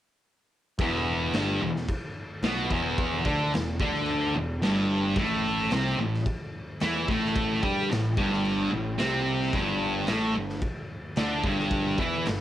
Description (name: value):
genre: garage rock duo or trio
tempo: 110 BPM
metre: 4/4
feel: straight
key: E minor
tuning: A4 = 440 Hz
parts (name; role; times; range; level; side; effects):
- thick fuzz guitar; riff; 0.8-12.4 s; E2 to G4; -25 LUFS; equal; distortion, cassette tape
- fuzz picked electric bass; bass; 0.8-12.4 s; E1 to G2; -34 LUFS; equal; overdrive, tube saturation
- raw garage drum kit; drums; 0.8-12.4 s; crash cymbal, kick drum, snare drum; -32 LUFS; equal; cassette tape
room: moderate studio reverb, RT60 0.6 s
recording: home recording on cassette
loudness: -24 LUFS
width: side -12 dB against mid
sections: 0.8-12.4 A section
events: none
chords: 0.8 Em; 5.2 A5; 9.5 G5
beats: | 0.79 1.33 1.88 2.43 | 2.98 3.53 4.07 4.62 | 5.17 5.71 6.26 6.80 | 7.35 7.89 8.44 8.98 | 9.53 10.07 10.62 11.16 | 11.71 12.25